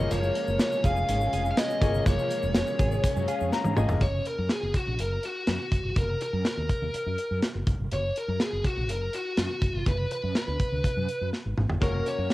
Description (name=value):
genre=1980s-style pop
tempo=123 BPM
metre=4/4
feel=straight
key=F# major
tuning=A4 = 439 Hz
part: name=biting lead guitar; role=melody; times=0.0-12.3 s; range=F#4 to E#5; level=-30 LUFS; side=left 1 dB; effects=overdrive, cassette tape
part: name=bright grand piano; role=accompaniment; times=0.0-4.0, 11.8-12.3 s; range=G#3 to A#5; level=-34 LUFS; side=left 6 dB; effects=cassette tape
part: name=overdriven semi-hollow guitar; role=accompaniment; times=0.0-4.0 s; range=C#3 to C#4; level=-39 LUFS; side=left 6 dB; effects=wide subtle chorus, cassette tape
part: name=direct-recorded clean electric guitar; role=riff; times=0.0-4.6, 11.8-12.3 s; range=E#3 to G#4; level=-34 LUFS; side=right 6 dB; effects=ensemble chorus, cassette tape, analog delay
part: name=fretless electric bass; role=bass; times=0.0-12.3 s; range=E#1 to G#2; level=-30 LUFS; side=equal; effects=ensemble chorus
part: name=modern studio drum kit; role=drums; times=0.1-12.3 s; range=hi-hat, kick drum, snare drum, tambourine, toms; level=-27 LUFS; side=equal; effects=none
part: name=egg shaker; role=percussion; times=0.1-4.0 s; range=none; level=-54 LUFS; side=left 8 dB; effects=none
room=light reverb, small room ambience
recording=home recording on cassette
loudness=-24 LUFS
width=side -17 dB against mid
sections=0.0-4.0 A section; 4.0-12.3 B section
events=grand piano fill 3.0-4.0; drum fill 3.5-4.0, 11.3-11.8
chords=0.0 C#6; 4.0 F#; 6.0 D#m/F#; 7.7 F#; 9.9 Bm/F#; 11.8 F#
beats=| 0.11 0.60 1.08 1.57 | 2.06 2.55 3.04 3.52 | 4.01 4.50 4.99 5.47 | 5.96 6.45 6.94 7.42 | 7.91 8.40 8.89 9.38 | 9.86 10.35 10.84 11.33 | 11.81 12.30